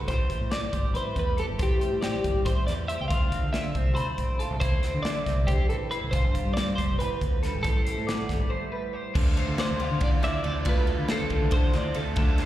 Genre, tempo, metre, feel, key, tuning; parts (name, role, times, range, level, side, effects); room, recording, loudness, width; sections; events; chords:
math rock and midwest emo; 278 BPM (eighths); 7/8; straight; A4 = 439 Hz
twelve-string electric guitar; accompaniment; 0.0-12.5 s; E2 to G4; -36 LUFS; right 6 dB; phaser, slapback echo
twelve-string electric guitar; arpeggios; 0.0-12.5 s; F4 to B5; -35 LUFS; left 3 dB; wide subtle chorus, slapback echo
growling fingered electric bass; bass; 0.0-12.4 s; F1 to D3; -28 LUFS; equal; overdrive
twelve-string electric guitar; melody; 0.1-12.0 s; G4 to G5; -31 LUFS; equal; harmonic tremolo, slapback echo
modern studio drum kit; drums; 0.1-12.5 s; crash cymbal, hi-hat, kick drum, ride cymbal, snare drum; -28 LUFS; equal
overdriven electric guitar; riff; 9.1-12.5 s; D3 to F4; -34 LUFS; equal; slapback echo
small room reverb; live gig heard through the venue's PA, recital hall reverb; -24 LUFS; side -13 dB against mid
0.0-9.2 A section; 9.2-12.5 B section
break 8.5-9.2
0.1 Am7; 3.1 Dm9; 6.1 G7sus4; 7.7 Am9; 9.2 Dm7